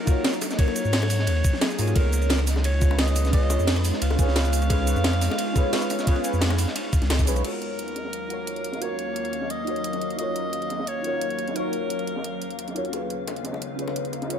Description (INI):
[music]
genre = liquid drum and bass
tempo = 175 BPM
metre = 4/4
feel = straight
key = Eb minor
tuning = A4 = 440 Hz
[part]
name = bright alto saxophone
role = melody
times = 0.0-12.8 s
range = Ab4 to F5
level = -32 LUFS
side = equal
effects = digital delay
[part]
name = deep mellow chord stab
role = accompaniment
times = 0.0-14.4 s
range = Cb4 to Db5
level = -30 LUFS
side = equal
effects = chorus, phaser, dub echo
[part]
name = glassy FM pad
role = sustained chords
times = 0.0-14.4 s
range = Eb2 to F5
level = -32 LUFS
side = left 1 dB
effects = ensemble chorus, built-in reverb, sidechain pumping
[part]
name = crunchy breakbeat drum kit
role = drums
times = 0.1-14.4 s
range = hi-hat, ride cymbal, snare drum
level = -34 LUFS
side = equal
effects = high-pass filter on cymbals, low-pass filter on cymbals, high-pass filter on hats, low-pass filter on hats, high-pass filter on snare, low-pass filter on snare, high-pass filter on room, low-pass filter on room
[part]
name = drum and bass drum kit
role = drums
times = 0.1-14.4 s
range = cabasa, crash cymbal, hi-hat, ride cymbal, rim click, snare drum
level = -30 LUFS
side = right 1 dB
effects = overdrive
[part]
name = electronic kick drum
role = drums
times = 0.1-7.3 s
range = none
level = -21 LUFS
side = equal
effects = none
[part]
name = bongos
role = percussion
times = 0.1-7.4, 12.9-14.2 s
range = none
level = -37 LUFS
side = left 4 dB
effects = none
[part]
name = saturated sub bass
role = bass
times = 0.8-7.4 s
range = Cb2 to Ab2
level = -22 LUFS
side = equal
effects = tube saturation
[sound]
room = light reverb, small room ambience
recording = none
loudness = -22 LUFS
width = side -8 dB against mid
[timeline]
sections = 0.0-7.4 A section; 7.4-14.4 B section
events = drop 0.0-7.4; band accent 7.1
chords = 0.0 Ebm9; 2.0 Db7; 7.4 Ebm9; 12.9 Db7